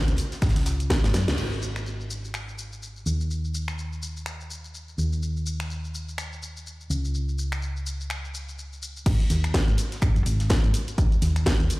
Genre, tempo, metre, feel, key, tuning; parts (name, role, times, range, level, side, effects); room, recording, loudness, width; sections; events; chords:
piano house; 125 BPM; 4/4; swing 58% on 16ths; A4 = 441 Hz
hollow-body short-scale fingered electric bass; bass; 0.0-11.7 s; F#1 to F#2; -27 LUFS; equal; sidechain pumping, low-pass filter
garage drum kit; drums; 0.1-11.8 s; crash cymbal, finger snaps, hi-hat, ride cymbal, shaker, snare drum; -32 LUFS; equal
deep reggae drum kit; drums; 0.2-1.4, 9.1-11.8 s; hi-hat, snare drum; -42 LUFS; right 2 dB
electronic kick drum; drums; 0.4-1.0, 9.1-11.6 s; -23 LUFS; equal
light reverb, digital ambience; played on a big sound system in a bare room, large studio reverb; -24 LUFS; side -21 dB against mid
0.0-1.4 A section; 1.4-9.1 B section; 9.1-11.8 C section
drum fill 1.0-1.4; band accent 1.3; drop 9.1-11.8